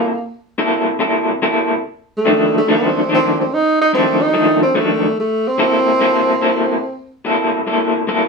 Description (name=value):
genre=blues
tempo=144 BPM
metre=4/4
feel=swing 66% on 8ths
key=C mixolydian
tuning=A4 = 440 Hz
part: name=mellow tenor saxophone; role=melody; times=0.0-7.1 s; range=A3 to Eb4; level=-16 LUFS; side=right 1 dB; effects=none
part: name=electric guitar through a small old amp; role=riff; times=0.0-8.3 s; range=F2 to A4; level=-15 LUFS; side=left 1 dB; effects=tremolo
room=moderate studio reverb, RT60 0.6 s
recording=band playing live in one room, small room ambience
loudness=-13 LUFS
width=side -4 dB against mid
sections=0.0-8.3 A section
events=none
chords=0.0 C6; 2.3 F6; 5.6 C6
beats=0.17 | 0.59 1.01 1.42 1.84 | 2.26 2.67 3.09 3.50 | 3.92 4.34 4.75 5.17 | 5.59 6.01 6.42 6.84 | 7.26 7.67 8.09